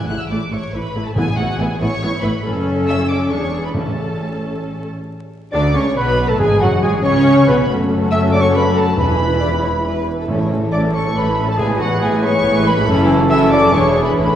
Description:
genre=classical, dramatic, fast romantic movement for symphony orchestra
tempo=139 BPM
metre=3/4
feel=straight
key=A major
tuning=A4 = 439 Hz
part: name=rich symphonic violin section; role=melody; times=0.0-14.4 s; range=F#5 to F#6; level=-27 LUFS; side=left 1 dB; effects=none
part: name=warm symphonic violin section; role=second line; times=0.0-14.4 s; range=C#4 to F#5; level=-27 LUFS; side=left 2 dB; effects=none
part: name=timpani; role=percussion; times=0.0-4.4, 6.4-14.3 s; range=E2 to A2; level=-25 LUFS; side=equal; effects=none
part: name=rich symphonic viola section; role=accompaniment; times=0.1-14.4 s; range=E3 to A4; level=-21 LUFS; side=equal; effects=none
part: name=rich symphonic cello section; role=bass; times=0.1-14.4 s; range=E2 to D3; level=-23 LUFS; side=right 1 dB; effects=none
part: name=rich symphonic double bass section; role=bass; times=0.1-14.4 s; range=E1 to D2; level=-22 LUFS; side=right 1 dB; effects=none
part: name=mellow clarinet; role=second line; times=5.5-14.4 s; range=F#4 to E5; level=-23 LUFS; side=left 2 dB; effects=none
part: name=mellow cor anglais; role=second line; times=5.5-14.4 s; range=F#4 to E5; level=-24 LUFS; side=right 2 dB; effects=none
part: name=mellow hollow silver concert flute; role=second line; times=5.5-14.4 s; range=F#5 to E6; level=-25 LUFS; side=left 1 dB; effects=none
part: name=mellow French horn section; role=sustained chords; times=5.5-14.4 s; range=E3 to E4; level=-21 LUFS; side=left 2 dB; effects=none
part: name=mellow trumpet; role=stabs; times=5.5-14.4 s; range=F#4 to D5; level=-22 LUFS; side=equal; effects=none
room=wet scoring stage reverb, RT60 1.5 s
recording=heard from further back in the room, vinyl crackle, nothing above 10.7 kHz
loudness=-14 LUFS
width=side -10 dB against mid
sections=0.0-5.1 A section; 5.1-14.4 A section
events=timpani fill 14.2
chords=0.0 A5; 1.2 E5/A; 2.4 F#m; 3.3 E7; 3.8 A; 6.4 F#sus24; 7.7 F#m; 9.0 E; 10.3 A; 11.6 E/A; 12.9 F#m7; 13.7 E7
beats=0.30 0.73 | 1.16 1.59 2.01 | 2.44 2.87 3.31 | 3.75 4.20 4.65 | 5.10 5.54 5.98 | 6.41 6.84 7.26 | 7.69 8.12 8.55 | 8.98 9.42 9.85 | 10.29 10.72 11.15 | 11.59 12.01 12.44 | 12.87 13.29 13.73 | 14.18

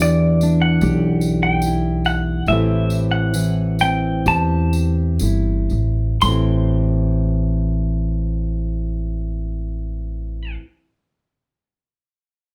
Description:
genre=acoustic folk duo or small band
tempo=58-75 BPM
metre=4/4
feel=straight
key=A dorian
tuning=A4 = 440 Hz
part: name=semi-hollow electric guitar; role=melody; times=0.0-10.5 s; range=D5 to C6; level=-24 LUFS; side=equal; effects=tremolo
part: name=fingerpicked steel-string acoustic guitar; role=accompaniment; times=0.0-10.7 s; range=E2 to G4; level=-23 LUFS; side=equal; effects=none
part: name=upright bass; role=bass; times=0.0-10.6 s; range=G1 to E2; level=-23 LUFS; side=equal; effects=none
part: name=tambourine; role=percussion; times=0.0-6.7 s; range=none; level=-37 LUFS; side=equal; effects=none
room=light reverb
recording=none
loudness=-19 LUFS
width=mono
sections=0.0-6.2 A section; 6.2-10.4 B section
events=slowing down 0.0-6.2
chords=0.0 Em7; 2.5 Am7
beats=0.01 0.81 1.64 | 2.48 3.36 4.27 5.22 | 6.22 7.26 8.29 9.33

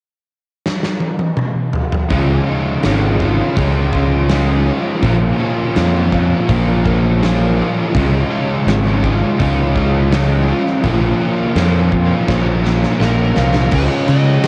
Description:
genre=rock, shoegaze and dream pop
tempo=82 BPM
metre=4/4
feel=straight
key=Db major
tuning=A4 = 439 Hz
part: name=huge arena drum kit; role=drums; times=0.7-14.5 s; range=crash cymbal, hi-hat, kick drum, ride cymbal, snare drum, toms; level=-22 LUFS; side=equal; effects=cassette tape
part: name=picked twelve-string acoustic guitar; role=arpeggios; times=2.1-14.5 s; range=Ab3 to Db5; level=-29 LUFS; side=equal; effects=none
part: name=overdriven semi-hollow guitar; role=riff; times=2.1-14.5 s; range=Bb2 to F4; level=-24 LUFS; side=equal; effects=reverse reverb, cassette tape
part: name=thick fuzz guitar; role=riff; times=2.1-14.5 s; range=Bb2 to Db4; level=-22 LUFS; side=equal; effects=distortion, ensemble chorus, cassette tape
part: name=fuzz fingered electric bass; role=bass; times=2.1-14.4 s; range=Ab1 to Db3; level=-18 LUFS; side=equal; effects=overdrive
part: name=bluesy overdriven lead guitar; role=melody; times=13.0-14.5 s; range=Bb4 to Eb5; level=-25 LUFS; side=equal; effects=distortion
room=light reverb, studio ambience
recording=home recording on cassette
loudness=-15 LUFS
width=mono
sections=0.0-2.1 A section; 2.1-13.7 B section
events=drum fill 0.7-2.1, 12.3-13.7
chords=0.0 N.C.; 2.1 Dbadd9; 5.0 Bbmadd9; 7.9 Dbadd9; 10.8 Bbmadd9; 13.7 Dbadd9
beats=0.66 1.38 | 2.11 2.84 3.57 4.30 | 5.03 5.75 6.48 7.21 | 7.93 8.66 9.39 10.11 | 10.84 11.56 12.29 13.01 | 13.73 14.46

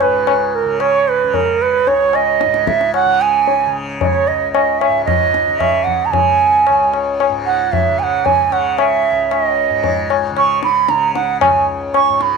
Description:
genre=indian classical, Hindustani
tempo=113 BPM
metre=4/4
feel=straight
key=C# raga kafi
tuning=A4 = 440 Hz
part: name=bright bansuri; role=melody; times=0.0-12.4 s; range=A#4 to C#6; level=-14 LUFS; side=right 8 dB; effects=none
part: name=tanpura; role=drone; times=0.0-12.4 s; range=C#2 to C#3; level=-24 LUFS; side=left 3 dB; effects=none
part: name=tabla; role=percussion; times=0.0-12.4 s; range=none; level=-18 LUFS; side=left 12 dB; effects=none
room=wet spring reverb, RT60 1.2 s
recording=1960s-style stereo with parts hard left and right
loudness=-12 LUFS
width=side -5 dB against mid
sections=0.0-12.4 A section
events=none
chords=none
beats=0.27 0.81 1.34 | 1.88 2.41 2.94 3.48 | 4.01 4.54 5.07 5.60 | 6.13 6.67 7.20 7.72 | 8.25 8.78 9.31 9.84 | 10.37 10.89 11.42 11.95

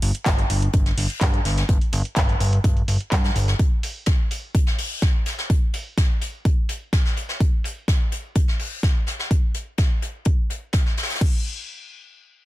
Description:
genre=progressive house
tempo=126 BPM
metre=4/4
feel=straight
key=unclear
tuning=A4 = 439 Hz
part: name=fat analog bass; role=bass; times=0.0-3.5 s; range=G1 to G2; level=-22 LUFS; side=equal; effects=sidechain pumping
part: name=pop drum kit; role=drums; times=0.0-11.3 s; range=crash cymbal, handclaps, hi-hat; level=-29 LUFS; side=equal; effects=low-pass filter on hats, low-pass filter on snare, low-pass filter on cymbals
part: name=soft brush drum kit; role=drums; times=0.0-11.2 s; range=hi-hat, snare drum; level=-30 LUFS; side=left 2 dB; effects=high-pass filter on hats, soft clipping on snare, high-pass filter on snare, high-pass filter on room
part: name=electronic kick drum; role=drums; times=0.3-11.3 s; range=none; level=-20 LUFS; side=equal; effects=none
room=small room reverb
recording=dense, heavily limited modern master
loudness=-19 LUFS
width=side -16 dB against mid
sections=0.0-11.2 A section; 11.2-12.5 B section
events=none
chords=none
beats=0.26 0.74 1.21 | 1.69 2.17 2.64 3.12 | 3.59 4.07 4.55 5.02 | 5.50 5.97 6.45 6.93 | 7.40 7.88 8.36 8.83 | 9.31 9.78 10.26 10.74 | 11.21

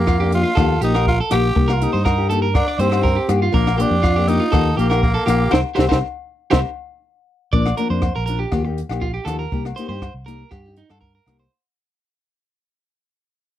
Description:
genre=highlife guitar band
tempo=121 BPM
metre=4/4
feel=straight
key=unclear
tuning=A4 = 440 Hz
part: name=growling tenor saxophone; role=melody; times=0.0-6.6 s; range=Bb3 to G4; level=-22 LUFS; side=equal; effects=none
part: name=electric guitar at the edge of break-up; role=arpeggios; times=0.0-11.5 s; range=Eb4 to D5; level=-24 LUFS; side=right 6 dB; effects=slapback echo
part: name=fingered electric bass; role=bass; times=0.0-11.5 s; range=Bb1 to G2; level=-21 LUFS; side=equal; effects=none
part: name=compact cocktail drum kit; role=drums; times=0.1-11.4 s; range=hi-hat, kick drum, rim click, snare drum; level=-21 LUFS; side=right 1 dB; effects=none
part: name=agogo bells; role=percussion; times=0.1-11.4 s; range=none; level=-28 LUFS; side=left 11 dB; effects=none
part: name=nylon-string guitar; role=accompaniment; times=0.2-11.4 s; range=F3 to G4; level=-23 LUFS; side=left 6 dB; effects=none
room=little or no reverb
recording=dry, close 1970s-style studio recording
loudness=-16 LUFS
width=side -12 dB against mid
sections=0.0-7.5 A section; 7.5-11.5 B section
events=band accent 5.5-7.5; drum fill 6.5-7.5; fade-out 7.5-11.5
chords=0.0 Bb; 0.6 Ebadd9; 1.6 Cm7; 3.5 Bb; 4.5 Ebadd9; 5.5 Cm7; 7.5 Bb; 8.5 Ebadd9; 9.5 Cm7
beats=0.08 0.57 1.07 | 1.56 2.06 2.55 3.05 | 3.54 4.04 4.53 5.03 | 5.53 6.02 6.52 7.02 | 7.51 8.01 8.51 9.01 | 9.51 10.01 10.52 11.02

